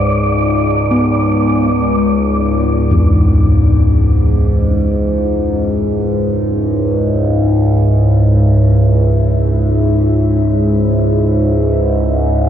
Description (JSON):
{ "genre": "dark ambient drone", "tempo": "free time", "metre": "none", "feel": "none", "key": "C# phrygian", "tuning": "A4 = 439 Hz", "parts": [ { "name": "overtone-sweeping drone", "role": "drone", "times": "0.0-12.5 s", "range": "C#2 to G#2", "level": "-12 LUFS", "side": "equal", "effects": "chorus, built-in reverb, phaser" }, { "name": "wind-like tuned noise texture", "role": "texture", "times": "0.0-1.7 s", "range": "D5", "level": "-21 LUFS", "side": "right 2 dB", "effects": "built-in reverb" }, { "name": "gamelan-type bossed gongs", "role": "arpeggios", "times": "0.9-9.7 s", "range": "E2 to B3", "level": "-19 LUFS", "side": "left 1 dB", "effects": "diffuse ambient delay" }, { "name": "deep dark ambient pad", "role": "sustained chords", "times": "4.6-12.5 s", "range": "G#3 to E5", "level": "-25 LUFS", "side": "equal", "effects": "chorus, built-in reverb" } ], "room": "moderate huge ambient reverb, RT60 6.9 s", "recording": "cassette tape", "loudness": "-11 LUFS", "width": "side -10 dB against mid", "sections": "0.0-1.7 A section; 1.7-12.5 B section", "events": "fade-in on ambient pad 1.7-12.5", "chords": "0.0 Bm/C#; 1.7 C#m" }